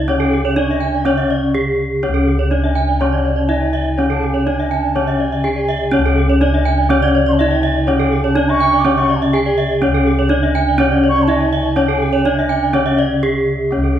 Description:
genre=Balinese gamelan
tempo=123 BPM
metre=4/4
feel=straight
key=C# pelog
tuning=A4 = 440 Hz
part: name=gamelan-type bronze metallophone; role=melody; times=0.0-14.0 s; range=C#4 to G#4-45c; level=-18 LUFS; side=equal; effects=none
part: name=gamelan-type bronze metallophone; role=accompaniment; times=0.0-14.0 s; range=C#3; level=-23 LUFS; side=right 2 dB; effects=none
part: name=gamelan-type bronze metallophone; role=arpeggios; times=0.0-14.0 s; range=G#4-45c to G#5-45c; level=-22 LUFS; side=left 4 dB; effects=none
part: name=gamelan-type bossed gongs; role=bass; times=0.0-14.0 s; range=C#2 to D4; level=-20 LUFS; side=left 1 dB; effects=none
part: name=reedy bansuri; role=second line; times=0.2-14.0 s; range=C#5 to D6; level=-24 LUFS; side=right 1 dB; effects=none
part: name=gamelan-type bronze metallophone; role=arpeggios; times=0.2-14.0 s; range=A4-40c to G#5-45c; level=-21 LUFS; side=right 5 dB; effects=none
room=wet recital hall reverb, RT60 1.5 s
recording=recorded in a church or concert hall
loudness=-13 LUFS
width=side -10 dB against mid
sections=0.0-2.0 A section; 2.0-14.0 A section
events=none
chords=none

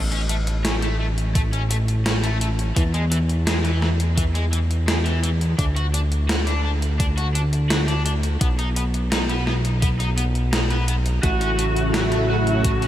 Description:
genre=synthwave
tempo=85 BPM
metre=4/4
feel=straight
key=A major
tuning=A4 = 437 Hz
part: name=fat analog bass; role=bass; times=0.0-12.9 s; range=A1 to E2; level=-21 LUFS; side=equal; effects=tube saturation
part: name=crunchy overdriven guitar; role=riff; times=0.1-12.9 s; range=E3 to F#4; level=-29 LUFS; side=left 2 dB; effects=wide subtle chorus, analog delay
part: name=gated 80s digital drum machine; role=drums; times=0.1-12.9 s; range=hi-hat, snare drum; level=-26 LUFS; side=equal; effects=gated reverb, gated reverb snare, overdrive
part: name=electronic kick drum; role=drums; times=1.4-12.8 s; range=none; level=-22 LUFS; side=equal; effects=overdrive
part: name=lead guitar through a small cranked amp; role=melody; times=11.2-12.9 s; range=F#4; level=-24 LUFS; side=right 3 dB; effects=overdrive, vintage 12-bit sampler grit, analog delay
part: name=analog string pad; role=sustained chords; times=11.2-12.9 s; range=C#3 to E4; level=-29 LUFS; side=equal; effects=ensemble chorus, sidechain pumping
room=light reverb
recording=none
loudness=-19 LUFS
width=side -12 dB against mid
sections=0.0-12.9 A section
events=none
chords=0.0 A; 2.8 E; 5.6 D; 8.4 B; 11.2 A6

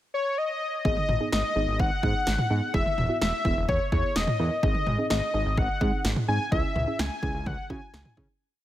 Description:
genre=synth-pop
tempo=127 BPM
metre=4/4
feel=straight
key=G# minor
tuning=A4 = 440 Hz
part: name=wide unison lead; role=melody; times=0.1-8.2 s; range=C#5 to G#5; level=-28 LUFS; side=left 2 dB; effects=none
part: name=soft round pluck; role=accompaniment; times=0.8-8.3 s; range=B3 to A#4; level=-33 LUFS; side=right 4 dB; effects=chorus
part: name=fat analog bass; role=bass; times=0.8-8.3 s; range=E1 to C#3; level=-29 LUFS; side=equal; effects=none
part: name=punchy analog drum machine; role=drums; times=0.8-8.3 s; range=kick drum, snare drum, toms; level=-28 LUFS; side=equal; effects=overdrive
room=light reverb, digital ambience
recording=none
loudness=-24 LUFS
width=side -13 dB against mid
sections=0.0-0.8 pickup bar; 0.8-8.4 verse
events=fade-out 6.5-8.4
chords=0.0 N.C.; 0.8 G#m; 2.7 E; 4.6 G#; 6.5 C#m

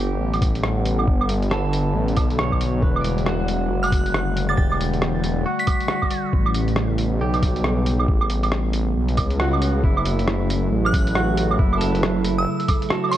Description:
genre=future garage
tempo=137 BPM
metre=4/4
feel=swing 61% on 16ths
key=F# phrygian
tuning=A4 = 439 Hz
part: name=clean electric guitar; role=accompaniment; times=0.0-13.2 s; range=E4 to D5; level=-30 LUFS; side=right 3 dB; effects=vintage 12-bit sampler grit, sidechain pumping, analog delay
part: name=warbly tape-like pad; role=sustained chords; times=0.0-13.2 s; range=C#3 to F#5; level=-26 LUFS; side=left 1 dB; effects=chorus, built-in reverb, sidechain pumping
part: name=swelling detuned saw bass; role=bass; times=0.0-12.5 s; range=E1 to C#2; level=-22 LUFS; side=equal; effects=sidechain pumping
part: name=lo-fi sampler-style drum kit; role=drums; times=0.3-13.2 s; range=claves, hi-hat, rim click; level=-26 LUFS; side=right 2 dB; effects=overdrive
part: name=electronic kick drum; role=drums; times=0.4-12.8 s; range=none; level=-21 LUFS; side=equal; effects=overdrive
part: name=glassy synth bell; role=melody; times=3.8-6.2, 10.9-13.2 s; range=C#6 to B6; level=-28 LUFS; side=right 1 dB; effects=chorus, analog delay
part: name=wind-like tuned noise texture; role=texture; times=10.9-13.2 s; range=A3 to A4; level=-35 LUFS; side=right 1 dB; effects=none
room=light reverb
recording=cassette tape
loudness=-18 LUFS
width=side -12 dB against mid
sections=0.0-9.8 A section; 9.8-13.2 B section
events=kick drops out 9.4-9.8; band accent 9.4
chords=0.0 Gmaj7; 2.8 Em11; 6.3 A13; 9.8 F#m7

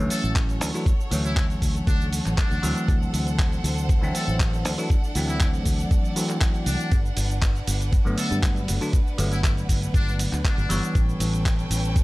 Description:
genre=nu-disco, nu disco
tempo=119 BPM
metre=4/4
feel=straight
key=D major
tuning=A4 = 440 Hz
part: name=bell-like tine electric piano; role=accompaniment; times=0.0-12.0 s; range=D3 to C#5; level=-28 LUFS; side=equal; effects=phaser, sidechain pumping
part: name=clear studio violin section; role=sustained chords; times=0.0-12.0 s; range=C#4 to G5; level=-35 LUFS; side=right 1 dB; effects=sidechain pumping
part: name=fingered electric bass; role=bass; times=0.0-12.0 s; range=G1 to G2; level=-26 LUFS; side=equal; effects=tube saturation
part: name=muted trumpet section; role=melody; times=0.1-11.0 s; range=D4 to A4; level=-35 LUFS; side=left 2 dB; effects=tape echo
part: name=dusty soul sampler-style drum kit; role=drums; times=0.1-12.0 s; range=handclaps, hi-hat, ride cymbal, shaker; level=-31 LUFS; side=right 1 dB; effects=none
part: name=electronic kick drum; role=drums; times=0.4-12.0 s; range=none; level=-22 LUFS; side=equal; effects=none
room=little or no reverb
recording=none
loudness=-21 LUFS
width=side -20 dB against mid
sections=0.0-12.0 A section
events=none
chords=0.0 Dmaj7; 2.9 D7; 6.9 Gmaj7; 11.0 A9

